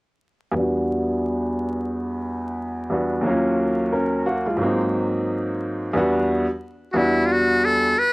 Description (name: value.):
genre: hip hop.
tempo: 89 BPM.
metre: 4/4.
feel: swing 59% on 16ths.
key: unclear.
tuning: A4 = 436 Hz.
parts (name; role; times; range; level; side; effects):
clear baby grand piano; accompaniment; 0.5-7.9 s; D#2 to A#4; -20 LUFS; equal; low-pass filter, cassette tape.
trumpet with metal mute; melody; 6.9-8.1 s; E4 to B4; -18 LUFS; left 1 dB; cassette tape.
room: moderate studio reverb, RT60 0.6 s.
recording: home recording on cassette, vinyl crackle.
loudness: -20 LUFS.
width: side -24 dB against mid.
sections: 0.6-5.9 A section; 5.9-8.1 B section.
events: filter sweep on grand piano 0.6-5.9.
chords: 0.6 Em9; 3.2 D#m9; 4.6 G#9; 5.9 Em9.